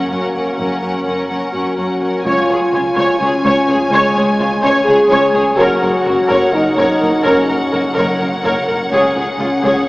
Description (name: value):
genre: cinematic, epic orchestral film score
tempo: 252 BPM (eighths)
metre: 7/8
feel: straight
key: Db major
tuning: A4 = 440 Hz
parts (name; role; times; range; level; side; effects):
- warm symphonic violin section; melody; 0.0-9.8 s; Gb5 to Ab5; -23 LUFS; left 1 dB; none
- warm symphonic violin section; second line; 0.0-9.9 s; F4 to Db5; -19 LUFS; equal; none
- warm symphonic viola section; accompaniment; 0.0-9.9 s; Db4 to Db5; -18 LUFS; equal; none
- mellow French horn section; sustained chords; 0.0-9.8 s; Ab3 to Ab4; -16 LUFS; left 1 dB; none
- dark symphonic cello section; bass; 0.1-9.7 s; Db2 to Gb2; -24 LUFS; equal; none
- clear symphonic double bass section; bass; 0.6-9.7 s; Gb1 to Db2; -27 LUFS; right 1 dB; none
room: wet cathedral reverb, RT60 6.4 s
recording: recorded in a church or concert hall, small speaker sound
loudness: -12 LUFS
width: side -20 dB against mid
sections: 0.0-2.3 A section; 2.3-9.9 B section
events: build-up 0.0-2.3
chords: 0.0 Gb; 2.3 Db; 5.6 Gb; 8.9 Db5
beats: 0.11 0.35 | 0.58 0.82 1.06 1.30 1.54 1.77 2.01 | 2.25 2.49 2.73 2.96 3.20 3.44 3.68 | 3.92 4.16 4.39 4.63 4.87 5.11 5.35 | 5.59 5.82 6.06 6.30 6.54 6.78 7.02 | 7.26 7.50 7.73 7.97 8.21 8.45 8.69 | 8.93 9.17 9.40 9.64